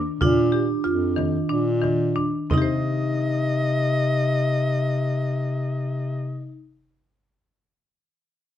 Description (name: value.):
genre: contemporary instrumental, chamber music in an uneven meter.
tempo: 174-192 BPM (eighths).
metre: 7/8.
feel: straight.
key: C minor.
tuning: A4 = 444 Hz.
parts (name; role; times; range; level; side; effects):
vibraphone with hard mallets; second line; 0.0-6.6 s; D4 to Eb4; -28 LUFS; right 3 dB; none.
marimba with hard mallets; arpeggios; 0.0-6.7 s; Eb3 to C5; -26 LUFS; left 1 dB; none.
mellow bass clarinet; bass; 0.0-6.6 s; F2 to C3; -24 LUFS; left 2 dB; none.
frame drum; percussion; 0.2-2.8 s; none; -25 LUFS; right 2 dB; none.
breathy soprano saxophone; melody; 2.5-6.6 s; Eb5; -28 LUFS; left 1 dB; none.
room: light reverb.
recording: dark, warm production.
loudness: -20 LUFS.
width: side -11 dB against mid.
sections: 0.0-2.5 A section; 2.5-7.3 B section.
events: slowing down 0.0-2.5.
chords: 0.2 Bb; 2.5 Cm.